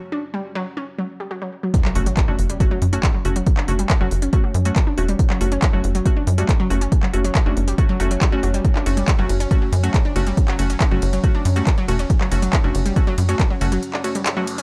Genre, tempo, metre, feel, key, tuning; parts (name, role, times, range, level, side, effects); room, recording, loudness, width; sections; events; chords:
driving peak-time techno; 139 BPM; 4/4; straight; F# phrygian; A4 = 440 Hz
analog pluck; riff; 0.1-14.6 s; F#3 to D4; -29 LUFS; equal; chorus, sidechain pumping, tape echo
deep dark ambient pad; drone; 2.5-14.6 s; F#3 to C#4; -34 LUFS; equal; chorus, built-in reverb, sidechain pumping
electronic kick drum; drums; 1.7-13.5 s; -20 LUFS; equal
techno drum kit; drums; 1.7-14.6 s; handclaps, hi-hat, ride cymbal; -29 LUFS; equal
impact and noise sweep; sound effects; 1.7-3.5, 14.2-14.6 s; -33 LUFS; equal
wavetable chord stab; stabs; 2.0-14.6 s; A3 to F#4; -30 LUFS; equal; sidechain pumping, tape echo
tight sequencer bass; bass; 2.0-13.8 s; E1 to F#2; -22 LUFS; equal; sidechain pumping
light reverb, digital ambience; dark, warm production; -19 LUFS; mono
0.0-1.7 A section; 1.7-14.6 B section
break 0.0-1.7, 13.8-14.6; drop 1.7-14.6; impact 1.7-3.5
0.0 N.C.; 1.7 F#m